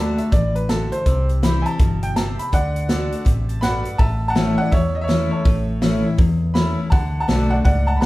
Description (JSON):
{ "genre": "honky-tonk and classic country", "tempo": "164 BPM", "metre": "4/4", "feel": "swing 62% on 8ths", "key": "A major from 4.0 s", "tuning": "A4 = 442 Hz", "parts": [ { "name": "bright upright piano", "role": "melody", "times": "0.0-8.1 s", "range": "A4 to B5", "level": "-24 LUFS", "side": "right 1 dB", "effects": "none" }, { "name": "picked steel-string acoustic guitar", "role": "accompaniment", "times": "0.0-8.1 s", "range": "E2 to F#4", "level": "-23 LUFS", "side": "left 2 dB", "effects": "none" }, { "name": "tonewheel organ", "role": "accompaniment", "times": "0.0-8.1 s", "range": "E4 to A5", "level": "-32 LUFS", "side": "right 3 dB", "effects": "slow rotary speaker" }, { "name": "vintage muted fingered electric bass", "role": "bass", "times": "0.0-8.1 s", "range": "G1 to E2", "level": "-23 LUFS", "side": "equal", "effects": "none" }, { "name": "natural country drum kit", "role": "drums", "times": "0.2-8.1 s", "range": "hi-hat, kick drum, snare drum", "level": "-19 LUFS", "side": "equal", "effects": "none" } ], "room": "moderate large studio reverb, RT60 1.1 s", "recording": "heard from further back in the room", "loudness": "-16 LUFS", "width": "side -18 dB against mid", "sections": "0.0-4.0 A section; 4.0-8.1 B section", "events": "upright piano solo 0.0-4.0; tonewheel organ fill 3.3-4.0", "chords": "0.0 D; 1.1 C; 2.5 D; 4.0 A; 6.9 D" }